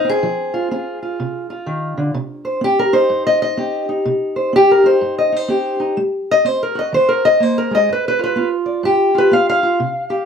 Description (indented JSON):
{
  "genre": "acoustic country blues, solo or duo",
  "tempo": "126 BPM",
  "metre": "4/4",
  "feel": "swing 62% on 8ths",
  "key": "C minor",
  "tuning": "A4 = 440 Hz",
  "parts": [
    { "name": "fingerpicked steel-string acoustic guitar", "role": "solo", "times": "0.0-10.3 s", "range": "G2 to F5", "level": "-14 LUFS", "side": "equal", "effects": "none" }
  ],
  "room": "moderate studio reverb, RT60 0.6 s",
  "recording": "none",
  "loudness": "-14 LUFS",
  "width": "side -7 dB against mid",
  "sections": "0.0-10.3 A section",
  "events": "steel-string acoustic guitar solo 0.0-10.3",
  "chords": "0.0 Fm; 2.1 Cm; 6.0 Ab7; 7.9 G7"
}